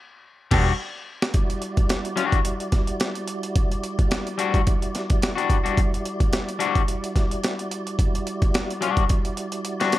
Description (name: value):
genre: funk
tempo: 108 BPM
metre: 4/4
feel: swing 56% on 16ths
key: E minor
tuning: A4 = 438 Hz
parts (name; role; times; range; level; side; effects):
- clear horn section; second line; 0.5-0.7 s; D3 to G4; -29 LUFS; right 2 dB; none
- electric guitar at the edge of break-up; accompaniment; 0.5-10.0 s; G3 to F#4; -24 LUFS; left 8 dB; none
- vintage muted picked electric bass; bass; 0.5-0.7 s; E1; -21 LUFS; equal; none
- breakbeat sampler-style drum kit; drums; 0.5-10.0 s; crash cymbal, hi-hat, kick drum, snare drum; -22 LUFS; equal; none
- mellow tonewheel organ; sustained chords; 1.3-10.0 s; G3 to D5; -29 LUFS; right 1 dB; fast rotary speaker, chorus vibrato
room: digital ambience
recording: none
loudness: -21 LUFS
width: side -15 dB against mid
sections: 0.0-1.3 A section; 1.3-10.0 B section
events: band accent 0.0-1.3; drum fill 0.2-1.3, 9.1-10.0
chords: 0.0 Em9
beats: 0.24 0.79 | 1.34 1.90 2.45 3.00 | 3.56 4.11 4.67 5.22 | 5.77 6.33 6.88 7.43 | 7.99 8.54 9.10 9.65